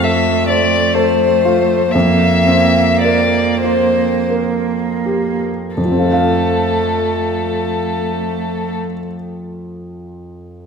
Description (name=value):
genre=classical, slow romantic movement for piano trio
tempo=26-45 BPM (dotted quarters)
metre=6/8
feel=rubato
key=F major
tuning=A4 = 444 Hz
part: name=rich violin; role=melody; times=0.0-8.8 s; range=A4 to E5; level=-16 LUFS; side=left 5 dB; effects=none
part: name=rich cello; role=second line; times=0.0-8.8 s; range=A3 to Bb3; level=-19 LUFS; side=right 8 dB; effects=none
part: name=clear concert grand piano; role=accompaniment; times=0.0-10.7 s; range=F2 to F5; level=-18 LUFS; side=equal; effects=none
room=wet concert hall reverb, RT60 1.8 s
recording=recorded in a church or concert hall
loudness=-13 LUFS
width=side -6 dB against mid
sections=0.0-5.8 A section; 5.8-9.8 B section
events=slowing down 0.0-5.8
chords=0.0 F; 1.9 C7/F; 5.8 F